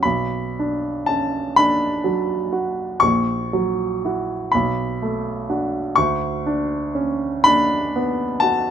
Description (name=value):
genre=classical, romantic nocturne for solo piano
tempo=41 BPM (dotted quarters)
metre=12/8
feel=rubato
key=unclear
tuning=A4 = 440 Hz
part: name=warm baby grand piano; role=solo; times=0.0-8.7 s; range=A#1 to C#6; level=-18 LUFS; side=equal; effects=none
room=light reverb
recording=close, detailed microphones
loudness=-18 LUFS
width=side -8 dB against mid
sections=0.0-8.7 A section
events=none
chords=0.0 Bm; 3.0 F#7/A#; 4.5 Bm7; 6.0 Bm/D